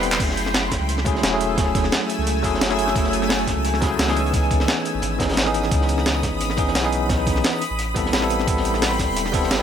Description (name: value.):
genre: liquid drum and bass.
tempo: 174 BPM.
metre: 4/4.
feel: straight.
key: F# dorian.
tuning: A4 = 441 Hz.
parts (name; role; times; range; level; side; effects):
bell-like tine electric piano; accompaniment; 0.0-9.6 s; E3 to B4; -23 LUFS; equal; medium stereo tremolo, ping-pong delay.
shimmering ambient pad; sustained chords; 0.0-9.6 s; A3 to E6; -26 LUFS; equal; chorus, built-in reverb, phaser.
warm sub bass; bass; 0.0-9.6 s; E1 to C#2; -26 LUFS; equal; none.
breakbeat sampler-style drum kit; drums; 0.0-9.6 s; crash cymbal, handclaps, hi-hat, snare drum; -24 LUFS; equal; none.
crunchy breakbeat drum kit; drums; 0.0-9.6 s; hi-hat, snare drum; -30 LUFS; equal; high-pass filter on hats, high-pass filter on snare, high-pass filter on room.
electronic kick drum; drums; 0.2-9.4 s; none; -24 LUFS; equal; none.
room: light reverb.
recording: none.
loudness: -18 LUFS.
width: side -8 dB against mid.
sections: 0.0-9.6 A section.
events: drum fill 0.0.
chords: 0.2 F#m9; 4.2 C#m9; 7.6 Am9.